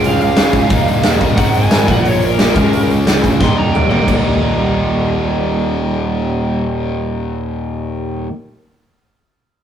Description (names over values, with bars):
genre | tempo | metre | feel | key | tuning
punk rock | 177 BPM | 4/4 | straight | Eb mixolydian | A4 = 440 Hz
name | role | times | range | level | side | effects
lead guitar through a small cranked amp | melody | 0.0-4.1 s | Bb4 to C6 | -19 LUFS | right 1 dB | overdrive
distorted electric guitar | riff | 0.0-8.3 s | Eb2 to Db4 | -23 LUFS | left 6 dB | overdrive
overdriven semi-hollow guitar | riff | 0.0-8.3 s | Eb2 to Ab4 | -17 LUFS | right 1 dB | none
picked electric bass | bass | 0.0-8.3 s | Eb1 to D2 | -22 LUFS | equal | none
big rock drum kit | drums | 0.0-4.2 s | crash cymbal, hi-hat, kick drum, snare drum, toms | -15 LUFS | equal | none
room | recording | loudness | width
light reverb | rough rehearsal-room recording, warm saturation | -12 LUFS | side -9 dB against mid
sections
0.0-4.1 A section; 4.1-6.8 B section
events
lead electric guitar solo 0.0-4.1; drum fill 3.4-4.1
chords
0.0 Db; 0.7 Eb; 1.4 Ab; 1.9 Bb; 2.6 Db; 3.4 Eb